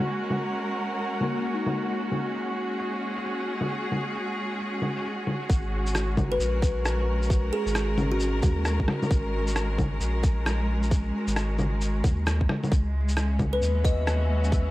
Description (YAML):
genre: future garage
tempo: 133 BPM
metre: 4/4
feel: swing 63% on 16ths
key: G# minor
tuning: A4 = 440 Hz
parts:
  - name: muted felt-like synth keys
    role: accompaniment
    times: 0.0-12.7 s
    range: A#3 to A#4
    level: -37 LUFS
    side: left 2 dB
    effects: chorus, sidechain pumping, low-pass filter, analog delay
  - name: clear studio string section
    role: sustained chords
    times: 0.0-14.7 s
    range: G#3 to A#4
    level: -30 LUFS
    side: equal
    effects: sidechain pumping
  - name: electronic bongos, shaker and rim click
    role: drums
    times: 0.0-14.6 s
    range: none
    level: -30 LUFS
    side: left 1 dB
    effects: low-pass filter on perc, low-pass filter on snare
  - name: wind-like tuned noise texture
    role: texture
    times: 0.0-5.5, 13.0-14.7 s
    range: E5 to F#5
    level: -39 LUFS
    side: right 2 dB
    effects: built-in reverb
  - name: warm sub bass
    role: bass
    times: 5.5-14.7 s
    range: G#1 to D#2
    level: -26 LUFS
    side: equal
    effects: sidechain pumping
  - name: electronic kick drum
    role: drums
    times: 5.5-14.6 s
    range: none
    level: -24 LUFS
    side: equal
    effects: none
  - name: kalimba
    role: melody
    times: 6.3-8.4, 13.5-14.1 s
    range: F#4 to D#5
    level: -30 LUFS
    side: left 1 dB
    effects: analog delay
room: light reverb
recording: vinyl crackle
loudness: -24 LUFS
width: side -17 dB against mid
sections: 0.0-5.5 A section; 5.5-14.7 B section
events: filter sweep on synth keys 0.0-5.5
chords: 0.0 G#5; 12.7 C#m7